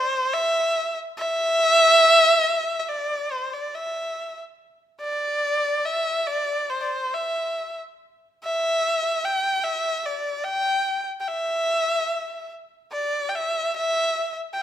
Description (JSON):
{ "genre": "chinese traditional", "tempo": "72 BPM", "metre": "4/4", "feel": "rubato", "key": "unclear", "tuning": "A4 = 439 Hz", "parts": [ { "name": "rich erhu", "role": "solo", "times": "0.0-14.6 s", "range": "C5 to G5", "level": "-20 LUFS", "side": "equal", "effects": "none" } ], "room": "moderate recital hall reverb, RT60 1.6 s", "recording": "minimal, uncompressed stereo recording", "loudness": "-20 LUFS", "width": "side -11 dB against mid", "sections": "0.0-14.6 A section", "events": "none", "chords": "none" }